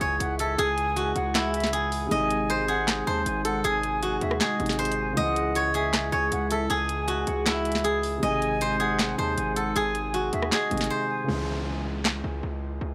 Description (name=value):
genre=hip hop, trap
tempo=157 BPM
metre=4/4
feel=half-time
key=C# harmonic minor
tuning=A4 = 440 Hz
part: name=steel-string zither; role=melody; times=0.0-12.9 s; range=E4 to D#5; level=-29 LUFS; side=equal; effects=none
part: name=concert flute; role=second line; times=0.0-11.3 s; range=D#5 to A5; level=-36 LUFS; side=equal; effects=tape echo
part: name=dark grand piano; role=accompaniment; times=0.0-12.9 s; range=B#2 to G#4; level=-37 LUFS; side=equal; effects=none
part: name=dark analog pad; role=sustained chords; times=0.0-11.3 s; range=B#2 to G#4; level=-36 LUFS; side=equal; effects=chorus
part: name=distorted 808-style bass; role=bass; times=0.0-12.9 s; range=G#1 to D#2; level=-35 LUFS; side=equal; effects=distortion
part: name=impact and downlifter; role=sound effects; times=0.0-0.6, 11.3-12.9 s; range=none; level=-43 LUFS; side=equal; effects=none
part: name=trap drum kit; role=drums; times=0.2-12.1 s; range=handclaps, hi-hat, rim click, snare drum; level=-31 LUFS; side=equal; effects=none
room=studio ambience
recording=dry, gritty hardware recording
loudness=-26 LUFS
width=mono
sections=0.0-11.3 A section; 11.3-12.9 B section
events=impact 0.0-0.6; break 10.9-11.3, 11.3-12.9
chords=0.0 C#m; 2.1 G#; 5.2 C#m; 8.2 G#; 11.3 C#m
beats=0.20 | 0.58 0.97 1.35 1.73 | 2.11 2.50 2.88 3.26 | 3.64 4.02 4.41 4.79 | 5.17 5.55 5.93 6.32 | 6.70 7.08 7.46 7.84 | 8.23 8.61 8.99 9.37 | 9.76 10.14 10.52 10.90 | 11.29 11.67 12.05 12.43 | 12.81